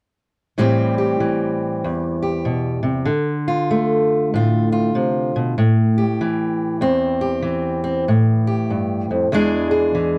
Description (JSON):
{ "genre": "acoustic country blues, solo or duo", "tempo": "96 BPM", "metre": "4/4", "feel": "swing 62% on 8ths", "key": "A minor", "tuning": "A4 = 444 Hz", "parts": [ { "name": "fingerpicked steel-string acoustic guitar", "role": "solo", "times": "0.6-10.2 s", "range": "E2 to G#4", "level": "-19 LUFS", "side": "equal", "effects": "none" } ], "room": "light reverb", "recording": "dry, close 1970s-style studio recording", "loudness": "-19 LUFS", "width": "mono", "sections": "0.6-10.2 A section", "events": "none", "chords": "0.6 Am7; 3.1 Dm7; 5.6 Am7; 9.3 E7" }